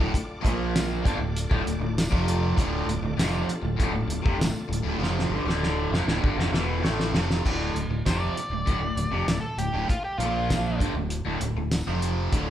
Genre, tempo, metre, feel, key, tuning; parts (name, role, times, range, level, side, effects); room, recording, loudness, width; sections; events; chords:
classic rock; 98 BPM; 4/4; straight; D minor; A4 = 441 Hz
bright tonewheel organ; sustained chords; 0.0-7.4 s; A3 to F5; -38 LUFS; left 1 dB
crunchy overdriven guitar; riff; 0.0-12.5 s; D2 to Bb3; -31 LUFS; left 6 dB; phaser
overdriven semi-hollow guitar; riff; 0.0-12.5 s; D2 to Bb3; -30 LUFS; right 4 dB
modern bright fingered electric bass; bass; 0.0-12.5 s; D1 to Bb1; -30 LUFS; equal
cloth-damped thuddy drum kit; drums; 0.1-12.5 s; crash cymbal, hi-hat, kick drum, snare drum, tambourine; -27 LUFS; equal
octave-fuzz lead guitar; melody; 8.1-10.8 s; F4 to D5; -30 LUFS; left 1 dB; distortion
moderate large studio reverb, RT60 1.1 s; band playing live in one room; -23 LUFS; side -11 dB against mid
0.0-7.5 A section; 7.5-12.5 B section
drum fill 5.0-7.5; lead electric guitar solo 7.5-12.5
0.4 Bb5; 1.0 Dm; 10.2 Bb5; 10.8 Dm